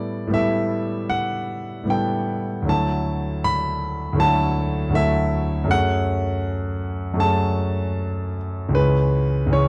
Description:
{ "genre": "classical, impressionist solo piano", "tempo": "79 BPM", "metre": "4/4", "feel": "rubato", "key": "unclear", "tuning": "A4 = 441 Hz", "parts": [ { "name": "clear grand piano", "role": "solo", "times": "0.0-9.7 s", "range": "C#2 to B5", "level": "-22 LUFS", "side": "equal", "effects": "none" } ], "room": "moderate studio reverb, RT60 0.7 s", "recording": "dark, warm production", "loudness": "-22 LUFS", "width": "mono", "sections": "0.0-9.7 A section", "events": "none", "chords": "0.0 G69/A; 2.7 Dadd9; 5.7 F#madd9; 8.8 C#m7" }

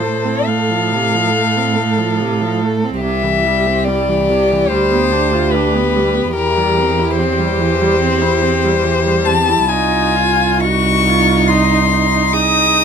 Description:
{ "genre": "classical, slow romantic movement for string quartet", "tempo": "71 BPM", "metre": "4/4", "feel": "rubato", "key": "unclear", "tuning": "A4 = 441 Hz", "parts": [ { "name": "warm violin", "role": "melody", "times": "0.0-12.8 s", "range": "Bb4 to Eb6", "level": "-16 LUFS", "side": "left 6 dB", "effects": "none" }, { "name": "rich violin", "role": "second line", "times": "0.0-12.8 s", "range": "Eb4 to A4", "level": "-21 LUFS", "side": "left 2 dB", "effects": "none" }, { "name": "rich viola", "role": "accompaniment", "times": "0.0-12.8 s", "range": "C3 to Gb4", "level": "-19 LUFS", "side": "right 5 dB", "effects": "none" }, { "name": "rich cello", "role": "bass", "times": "0.0-12.8 s", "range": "C2 to A2", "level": "-18 LUFS", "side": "right 4 dB", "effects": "none" } ], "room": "light reverb", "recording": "close, detailed microphones", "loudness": "-12 LUFS", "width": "side -7 dB against mid", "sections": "0.0-12.8 A section", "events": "none", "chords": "0.0 F/A; 3.0 C; 4.7 G7/D; 6.3 C/E; 9.7 Ab7/C" }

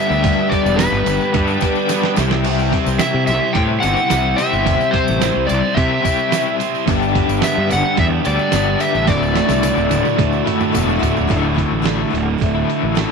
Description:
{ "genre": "classic rock", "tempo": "109 BPM", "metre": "4/4", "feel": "straight", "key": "D mixolydian", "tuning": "A4 = 439 Hz", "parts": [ { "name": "overdriven slide guitar", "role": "melody", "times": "0.0-11.0 s", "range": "B4 to G5", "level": "-20 LUFS", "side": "left 1 dB", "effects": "tape echo" }, { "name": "picked plugged-in twelve-string acoustic guitar", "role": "accompaniment", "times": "0.0-13.1 s", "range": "G2 to G4", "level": "-25 LUFS", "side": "left 13 dB", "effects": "none" }, { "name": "bright tonewheel organ", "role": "sustained chords", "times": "0.0-11.3 s", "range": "B3 to E5", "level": "-28 LUFS", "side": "left 1 dB", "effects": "none" }, { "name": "distorted electric guitar", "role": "riff", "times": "0.0-13.1 s", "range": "D2 to C5", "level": "-21 LUFS", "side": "right 12 dB", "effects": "distortion" }, { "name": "overdriven semi-hollow guitar", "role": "riff", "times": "0.0-13.1 s", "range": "D2 to C5", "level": "-22 LUFS", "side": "left 14 dB", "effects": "tremolo" }, { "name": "fuzz fingered electric bass", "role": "bass", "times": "0.1-13.0 s", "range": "D1 to C3", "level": "-21 LUFS", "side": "left 1 dB", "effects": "overdrive" }, { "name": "tambourine", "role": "percussion", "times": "0.1-11.2 s", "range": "none", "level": "-35 LUFS", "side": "left 20 dB", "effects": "none" }, { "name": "lo-fi sampler-style drum kit", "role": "drums", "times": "0.2-13.1 s", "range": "crash cymbal, hi-hat, kick drum, snare drum, splash cymbal, toms", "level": "-21 LUFS", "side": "right 5 dB", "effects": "none" } ], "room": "light reverb", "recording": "1960s-style stereo with parts hard left and right", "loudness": "-14 LUFS", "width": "side -5 dB against mid", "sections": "0.0-11.3 A section; 11.3-13.1 B section", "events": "drum fill 1.9-2.5, 9.1-11.3", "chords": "0.0 G; 2.2 C; 6.9 G; 9.1 Dadd9" }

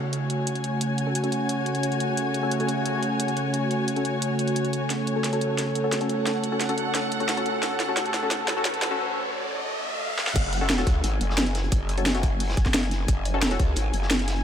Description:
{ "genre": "dark technical drum and bass", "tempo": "176 BPM", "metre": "4/4", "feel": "straight", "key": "F# minor", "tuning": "A4 = 440 Hz", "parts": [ { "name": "sweeping resonant pad", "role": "sustained chords", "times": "0.0-10.3 s", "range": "C#3 to A4", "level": "-28 LUFS", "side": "right 2 dB", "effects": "chorus, sidechain pumping" }, { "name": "dark studio string section", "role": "texture", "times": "0.0-14.4 s", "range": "F#4 to G#5", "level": "-31 LUFS", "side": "left 2 dB", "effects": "sidechain pumping" }, { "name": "drum and bass drum kit", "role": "drums", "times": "0.1-14.3 s", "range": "crash cymbal, hi-hat, snare drum", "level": "-28 LUFS", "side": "equal", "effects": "high-pass filter on snare, high-pass filter on hats, high-pass filter on cymbals" }, { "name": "filtered dub chord stab", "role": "stabs", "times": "1.1-13.6 s", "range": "C#4 to A4", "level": "-32 LUFS", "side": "left 2 dB", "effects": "chorus, ping-pong delay" }, { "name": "riser", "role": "sound effects", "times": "6.5-10.4 s", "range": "none", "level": "-34 LUFS", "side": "equal", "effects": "none" }, { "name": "growl bass", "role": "bass", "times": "10.4-14.4 s", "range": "F#1 to C#2", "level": "-26 LUFS", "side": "equal", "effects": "chorus" }, { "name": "crunchy breakbeat drum kit", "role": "drums", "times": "10.4-14.4 s", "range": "hi-hat, snare drum", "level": "-37 LUFS", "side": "equal", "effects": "none" }, { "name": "electronic kick drum", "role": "drums", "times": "10.4-13.7 s", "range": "none", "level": "-23 LUFS", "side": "equal", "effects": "none" } ], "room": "moderate huge ambient reverb, RT60 4.5 s", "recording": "dreamy mix soaked in reverb, high-pass filter", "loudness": "-23 LUFS", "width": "side -8 dB against mid", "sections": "0.0-10.4 A section; 10.4-14.4 B section", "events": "build-up 0.0-10.4; filter sweep on synth stab 0.0-10.4; filter sweep 0.0-10.4; drum fill 4.9-9.0, 10.2; riser 6.5-10.4; break 9.0-10.4; drop 10.4-14.4", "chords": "0.0 F#m" }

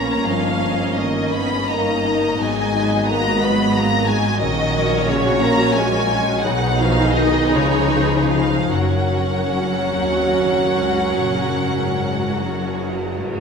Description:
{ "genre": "classical, slow romantic movement for symphony orchestra", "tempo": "48-60 BPM (dotted quarters)", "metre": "12/8", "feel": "rubato", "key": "F# major", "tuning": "A4 = 440 Hz", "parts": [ { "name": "warm symphonic violin section", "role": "melody", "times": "0.0-13.2 s", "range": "C#5 to B5", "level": "-24 LUFS", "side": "left 2 dB", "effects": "none" }, { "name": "rich studio violin section", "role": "second line", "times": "0.0-13.3 s", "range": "D#4 to D#5", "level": "-27 LUFS", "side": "left 1 dB", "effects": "none" }, { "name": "rich studio viola section", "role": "accompaniment", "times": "0.0-13.3 s", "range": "D#3 to D#4", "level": "-23 LUFS", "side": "right 3 dB", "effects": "none" }, { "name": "dark French horn section", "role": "sustained chords", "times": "0.0-13.2 s", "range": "C#3 to B3", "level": "-23 LUFS", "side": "left 1 dB", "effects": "none" }, { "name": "concert harp", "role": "arpeggios", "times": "0.0-13.4 s", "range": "F#2 to D#5", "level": "-25 LUFS", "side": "left 7 dB", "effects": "none" }, { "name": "clear studio double bass section", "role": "bass", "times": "0.0-13.3 s", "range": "F#1 to C#2", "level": "-27 LUFS", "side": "right 4 dB", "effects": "none" }, { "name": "dark symphonic cello section", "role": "bass", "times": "0.0-13.4 s", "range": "C#2 to C#3", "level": "-26 LUFS", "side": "right 2 dB", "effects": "none" } ], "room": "wet scoring stage reverb, RT60 1.9 s", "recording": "faint mains hum", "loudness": "-16 LUFS", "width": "side -6 dB against mid", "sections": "0.0-13.4 A section", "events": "none", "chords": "0.2 D#7/G; 2.4 G#m7; 4.4 F#/A#; 6.5 G#m7/B; 7.5 C#9; 8.7 F#" }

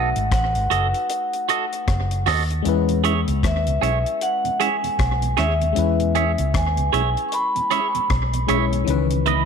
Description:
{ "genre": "lovers rock reggae", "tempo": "77 BPM", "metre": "4/4", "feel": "swing 60% on 16ths", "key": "E major", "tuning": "A4 = 439 Hz", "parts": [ { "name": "vibraphone with medium hard mallets", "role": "melody", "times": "0.0-8.1 s", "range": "E5 to C#6", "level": "-24 LUFS", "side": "equal", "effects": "tape echo" }, { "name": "FM electric piano", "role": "accompaniment", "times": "0.0-9.5 s", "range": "D#3 to C#5", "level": "-27 LUFS", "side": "left 12 dB", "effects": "chorus, slapback echo" }, { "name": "twangy electric guitar", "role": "stabs", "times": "0.0-9.4 s", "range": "E4 to E5", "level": "-24 LUFS", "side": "right 12 dB", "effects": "phaser" }, { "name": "vintage muted fingered electric bass", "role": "bass", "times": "0.0-9.5 s", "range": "F#1 to E2", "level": "-22 LUFS", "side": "equal", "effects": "none" }, { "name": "deep reggae drum kit", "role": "drums", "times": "0.2-9.5 s", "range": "hi-hat, kick drum, rim click", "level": "-26 LUFS", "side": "left 1 dB", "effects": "slapback echo" }, { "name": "mellow tonewheel organ", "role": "accompaniment", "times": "2.9-9.4 s", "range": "E2 to E4", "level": "-32 LUFS", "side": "right 11 dB", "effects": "chorus vibrato, slow rotary speaker" } ], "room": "light reverb, small room ambience", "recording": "1960s-style stereo with parts hard left and right", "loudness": "-18 LUFS", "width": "side -6 dB against mid", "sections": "0.0-9.5 A section", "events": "none", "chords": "0.0 B7; 2.6 E6; 8.9 C#m9" }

